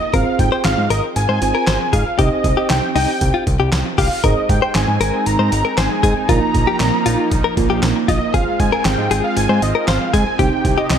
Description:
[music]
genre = synth-pop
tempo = 117 BPM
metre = 4/4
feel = straight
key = unclear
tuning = A4 = 440 Hz
[part]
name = wide unison lead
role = melody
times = 0.0-11.0 s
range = Eb5 to Bb5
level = -21 LUFS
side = right 1 dB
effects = ping-pong delay
[part]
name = muted felt-like synth keys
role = accompaniment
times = 0.0-11.0 s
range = Bb3 to C5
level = -24 LUFS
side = right 7 dB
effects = chorus
[part]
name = direct-recorded clean electric guitar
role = second line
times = 0.1-10.9 s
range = Eb4 to C5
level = -22 LUFS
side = left 7 dB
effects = tremolo, ping-pong delay
[part]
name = fat analog bass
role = bass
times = 0.1-11.0 s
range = Ab1 to Ab2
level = -19 LUFS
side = equal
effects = none
[part]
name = boom bap sampler-style drum kit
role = drums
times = 0.1-11.0 s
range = handclaps, hi-hat, kick drum, snare drum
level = -20 LUFS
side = equal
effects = overdrive
[part]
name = warm analog pad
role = sustained chords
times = 4.2-11.0 s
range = C3 to G4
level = -24 LUFS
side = equal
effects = chorus, tremolo
[sound]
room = light reverb, digital ambience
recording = none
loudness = -14 LUFS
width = side -8 dB against mid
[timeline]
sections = 0.0-11.0 A section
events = none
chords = 0.1 Fm/Ab; 2.2 Cm; 4.2 Ab; 6.3 Bbsus4; 8.3 Fm/Ab; 10.4 Cm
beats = | 0.14 0.65 1.16 1.67 | 2.19 2.70 3.21 3.73 | 4.24 4.75 5.26 5.78 | 6.29 6.80 7.32 7.83 | 8.34 8.85 9.37 9.88 | 10.39 10.90

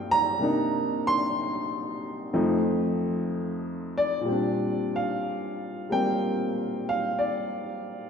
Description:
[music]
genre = solo jazz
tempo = 62 BPM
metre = 4/4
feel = swing 69% on 8ths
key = Bb major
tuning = A4 = 440 Hz
[part]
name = warm upright piano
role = solo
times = 0.0-8.1 s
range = F2 to C6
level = -25 LUFS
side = equal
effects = none
[sound]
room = wet church reverb, RT60 2.9 s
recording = recorded in a church or concert hall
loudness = -25 LUFS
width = side -6 dB against mid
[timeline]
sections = 0.0-8.1 A section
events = none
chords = 0.4 Cm9; 2.3 F7; 4.3 Bb69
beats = | 0.40 1.37 2.33 3.30 | 4.26 5.23 6.20 7.17

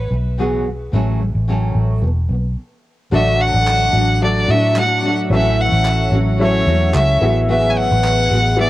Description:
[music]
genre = acoustic pop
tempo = 110 BPM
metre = 4/4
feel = swing 55% on 16ths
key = A major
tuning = A4 = 440 Hz
[part]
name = clear violin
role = melody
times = 0.0-8.7 s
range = C#5 to G#5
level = -18 LUFS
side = equal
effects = cassette tape, analog delay
[part]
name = nylon-string guitar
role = accompaniment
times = 0.0-8.7 s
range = A2 to A4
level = -21 LUFS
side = equal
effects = double-tracked left and right
[part]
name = vintage muted fingered electric bass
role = bass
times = 0.0-8.7 s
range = E1 to A2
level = -17 LUFS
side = equal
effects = none
[part]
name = warm upright piano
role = accompaniment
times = 3.1-8.7 s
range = B3 to E5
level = -23 LUFS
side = left 3 dB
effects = none
[part]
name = group handclap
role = percussion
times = 3.7-8.2 s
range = none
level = -28 LUFS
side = right 2 dB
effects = none
[sound]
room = light reverb, studio ambience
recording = home recording on cassette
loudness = -14 LUFS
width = side -16 dB against mid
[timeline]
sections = 0.0-3.1 A section; 3.1-8.7 B section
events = stop 2.6-3.1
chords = 0.0 Eadd9; 0.9 A6; 2.0 E5; 3.1 D/A; 5.3 A6; 7.2 Eadd9/A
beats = 0.38 | 0.93 1.48 2.03 2.58 | 3.12 3.67 4.22 4.76 | 5.31 5.86 6.40 6.95 | 7.50 8.04 8.59

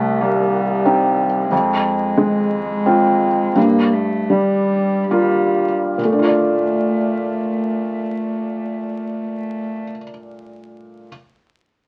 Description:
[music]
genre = neoclassical piano and strings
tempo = 67-92 BPM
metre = 3/4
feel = rubato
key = Bb major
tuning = A4 = 440 Hz
[part]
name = warm cello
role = second line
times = 0.0-9.8 s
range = G3 to Bb3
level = -24 LUFS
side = equal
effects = none
[part]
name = felt-muted upright piano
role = accompaniment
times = 0.0-11.1 s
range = C2 to D5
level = -20 LUFS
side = equal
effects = none
[sound]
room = light reverb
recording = very old 78 rpm record, vinyl crackle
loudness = -18 LUFS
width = mono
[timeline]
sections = 0.0-6.0 A section; 6.0-11.1 B section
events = slowing down 0.5-6.0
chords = 0.0 Cm7; 1.5 Fm; 3.6 Gm7; 6.0 Bbmaj7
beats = 0.20 0.86 | 1.52 2.18 2.86 | 3.56 4.30 5.10 | 5.98 6.82 7.67 | 8.52 9.38 10.22

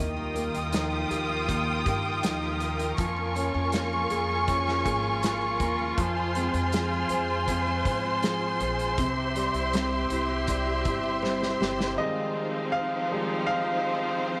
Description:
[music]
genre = pop ballad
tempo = 80 BPM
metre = 4/4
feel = straight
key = F minor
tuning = A4 = 439 Hz
[part]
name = warm concert grand piano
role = accompaniment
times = 0.0-14.4 s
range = C3 to F5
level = -34 LUFS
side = equal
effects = none
[part]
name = warm studio string section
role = sustained chords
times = 0.0-14.4 s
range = F3 to Eb6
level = -31 LUFS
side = equal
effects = none
[part]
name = picked steel-string acoustic guitar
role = arpeggios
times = 0.0-12.6 s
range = F2 to Ab4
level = -38 LUFS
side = equal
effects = none
[part]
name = upright bass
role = bass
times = 0.0-12.0 s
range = G1 to Ab2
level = -36 LUFS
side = equal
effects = none
[part]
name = loose indie drum kit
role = drums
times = 0.4-12.0 s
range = hi-hat, kick drum, snare drum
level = -35 LUFS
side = equal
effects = none
[sound]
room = moderate plate reverb, RT60 3.6 s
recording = none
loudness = -27 LUFS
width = mono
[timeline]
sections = 0.0-12.0 A section; 12.0-14.4 B section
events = drum fill 11.2-12.0; grand piano solo 12.0-14.4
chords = 0.0 Ebadd9; 3.0 Db6/F; 6.0 Fm; 9.0 C; 12.0 Fm7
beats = 0.73 1.48 2.23 | 2.98 3.73 4.48 5.23 | 5.98 6.73 7.48 8.23 | 8.98 9.73 10.48 11.23 | 11.98 12.73 13.48 14.23

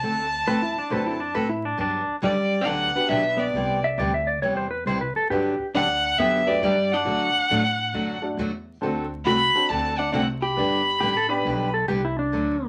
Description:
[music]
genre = country, western swing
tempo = 137 BPM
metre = 4/4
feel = swing 66% on 8ths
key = G major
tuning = A4 = 440 Hz
[part]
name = bright fiddle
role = melody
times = 0.0-11.7 s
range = D5 to B5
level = -25 LUFS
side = equal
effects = none
[part]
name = picked steel-string acoustic guitar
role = accompaniment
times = 0.0-12.6 s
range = C3 to A4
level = -30 LUFS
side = equal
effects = none
[part]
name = upright bass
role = bass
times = 0.0-12.7 s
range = G1 to A2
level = -35 LUFS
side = equal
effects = none
[part]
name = clean lap steel guitar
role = second line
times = 0.5-5.7, 11.0-12.7 s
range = D4 to E5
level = -28 LUFS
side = equal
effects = none
[part]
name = bright upright piano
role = accompaniment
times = 0.9-11.4 s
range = A3 to D5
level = -31 LUFS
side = equal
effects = none
[part]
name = hollow-body jazz guitar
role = second line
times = 2.2-11.7 s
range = G3 to G4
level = -31 LUFS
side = equal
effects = none
[sound]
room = wet studio ambience, RT60 0.5 s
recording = vinyl crackle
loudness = -23 LUFS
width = mono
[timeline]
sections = 0.0-12.7 A section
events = none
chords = 0.0 D7; 1.8 Gmaj7; 3.5 Cmaj7; 5.3 Gmaj7; 7.1 D; 8.8 D7; 10.6 G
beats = | 0.03 0.47 0.91 1.35 | 1.79 2.23 2.67 3.11 | 3.55 3.99 4.42 4.87 | 5.30 5.74 6.18 6.62 | 7.06 7.50 7.94 8.38 | 8.82 9.26 9.70 10.13 | 10.57 11.01 11.45 11.89 | 12.33

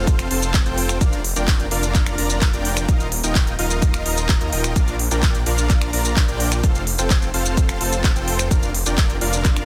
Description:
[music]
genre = EDM, festival progressive house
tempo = 128 BPM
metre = 4/4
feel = straight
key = Bb major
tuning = A4 = 440 Hz
[part]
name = dense compressed supersaw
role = riff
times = 0.0-9.7 s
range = C4 to Bb5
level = -27 LUFS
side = equal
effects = sidechain pumping, digital delay
[part]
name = detuned saw bass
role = bass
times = 0.0-9.7 s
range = Eb1 to Eb2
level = -26 LUFS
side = equal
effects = chorus, sidechain pumping
[part]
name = electronic kick drum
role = drums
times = 0.1-9.5 s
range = none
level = -20 LUFS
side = equal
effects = none
[part]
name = pop drum kit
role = drums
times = 0.1-9.7 s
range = finger snaps, handclaps, hi-hat, shaker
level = -26 LUFS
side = equal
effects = none
[sound]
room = little or no reverb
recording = dense, heavily limited modern master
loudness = -19 LUFS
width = mono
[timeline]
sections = 0.0-9.7 A section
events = none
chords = 0.0 F; 1.0 Bb/F; 2.9 Ebsus2; 4.8 Bb; 6.6 F; 8.5 Bb/F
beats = 0.07 0.54 | 1.01 1.48 1.95 2.42 | 2.89 3.35 3.82 4.29 | 4.76 5.23 5.70 6.17 | 6.64 7.11 7.57 8.04 | 8.51 8.98 9.45

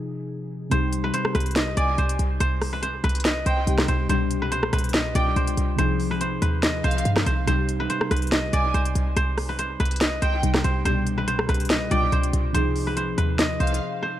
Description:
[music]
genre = hip hop, trap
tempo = 142 BPM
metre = 4/4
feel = half-time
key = C harmonic minor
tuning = A4 = 440 Hz
[part]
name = warbly lo-fi synth keys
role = accompaniment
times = 0.0-14.2 s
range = C2 to Ab4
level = -28 LUFS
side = left 2 dB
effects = chorus, low-pass filter, dub echo
[part]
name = guzheng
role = melody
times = 0.7-14.2 s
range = B4 to Eb5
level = -27 LUFS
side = right 1 dB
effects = low-pass filter, dub echo
[part]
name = short 808-style bass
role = bass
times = 0.7-13.8 s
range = C2 to G2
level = -24 LUFS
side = equal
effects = none
[part]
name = trap drum kit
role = drums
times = 0.7-13.8 s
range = hi-hat, rim click, snare drum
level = -27 LUFS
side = equal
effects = dub echo
[part]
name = rich studio violin section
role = second line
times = 1.8-13.8 s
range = F5 to Ab5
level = -34 LUFS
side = equal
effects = dub echo
[sound]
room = light reverb, small room ambience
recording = echo-heavy mix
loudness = -20 LUFS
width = side -12 dB against mid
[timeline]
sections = 0.7-14.2 A section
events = break 0.0-0.7, 13.8-14.2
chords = 0.0 Ab6/C; 0.7 Cm; 4.1 G/C; 5.8 Ab6/C; 7.5 Cm; 10.9 G/C; 12.5 Ab6/C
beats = 0.29 | 0.71 1.14 1.56 1.98 | 2.40 2.83 3.25 3.67 | 4.09 4.52 4.94 5.36 | 5.79 6.21 6.63 7.05 | 7.47 7.90 8.32 8.74 | 9.16 9.59 10.01 10.43 | 10.86 11.28 11.70 12.12 | 12.54 12.97 13.39 13.81

